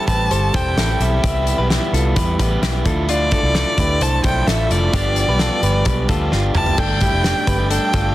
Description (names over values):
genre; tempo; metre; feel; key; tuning
jangly indie pop; 130 BPM; 4/4; straight; unclear; A4 = 441 Hz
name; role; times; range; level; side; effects
warm violin; melody; 0.0-8.1 s; D5 to A5; -22 LUFS; equal; none
overdriven electric guitar; accompaniment; 0.0-8.1 s; G2 to G4; -23 LUFS; right 4 dB; none
direct-recorded clean electric guitar; arpeggios; 0.0-8.1 s; D4 to C5; -24 LUFS; left 3 dB; none
vintage muted fingered electric bass; bass; 0.1-8.1 s; F1 to E2; -20 LUFS; equal; none
loose indie drum kit; drums; 0.1-8.0 s; crash cymbal, hi-hat, kick drum, snare drum, toms; -21 LUFS; equal; none
room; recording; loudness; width
light reverb, studio reverb; dense, heavily limited modern master; -15 LUFS; side -15 dB against mid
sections
0.0-6.8 A section; 6.8-8.1 B section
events
drum fill 6.3-6.8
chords
0.0 Am7; 1.2 Cmaj7; 2.9 Dmadd9; 4.9 G7